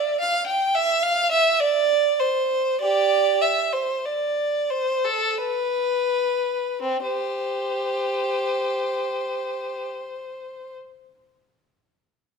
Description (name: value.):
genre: classical, baroque-style suite movement for unaccompanied violin.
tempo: 40-56 BPM.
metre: 3/4.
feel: rubato.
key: C major.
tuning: A4 = 440 Hz.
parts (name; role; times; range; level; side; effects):
warm violin; solo; 0.0-10.7 s; C4 to G5; -21 LUFS; right 1 dB; none.
room: moderate stone room reverb, RT60 1.4 s.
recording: minimal, uncompressed stereo recording.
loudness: -21 LUFS.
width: side -5 dB against mid.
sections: 0.0-6.8 A section; 6.8-11.2 B section.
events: slowing down 0.0-6.8.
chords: none.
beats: 0.47 1.60 | 2.79 4.03 5.37 | 6.81 8.23 9.68.